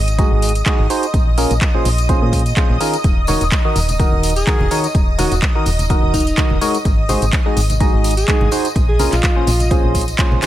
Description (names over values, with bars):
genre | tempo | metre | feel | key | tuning
piano house | 126 BPM | 4/4 | swing 55% on 16ths | Eb dorian | A4 = 441 Hz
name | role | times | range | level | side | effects
analog string pad | sustained chords | 0.0-10.5 s | Eb5 to Eb6 | -25 LUFS | equal | ensemble chorus, sidechain pumping
solid FM bass | bass | 0.0-10.4 s | Eb1 to Bb2 | -18 LUFS | equal | sidechain pumping
house drum kit | drums | 0.1-10.5 s | handclaps, hi-hat, tambourine | -23 LUFS | equal | none
percussive organ stab | riff | 0.2-10.5 s | Bb2 to Eb5 | -20 LUFS | equal | chorus, sidechain pumping, dub echo
electronic kick drum | drums | 0.2-10.3 s | none | -16 LUFS | equal | overdrive
tambourine and congas | percussion | 3.0-10.5 s | none | -28 LUFS | right 1 dB | none
breathy alto saxophone | melody | 4.4-9.8 s | Eb4 to Ab4 | -23 LUFS | equal | dub echo
room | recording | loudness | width
digital ambience | none | -13 LUFS | side -13 dB against mid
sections
0.0-10.5 A section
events
none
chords
0.0 Ab7; 1.1 Bbm7; 3.0 Ebm7; 6.9 Ab7; 8.8 Bbm7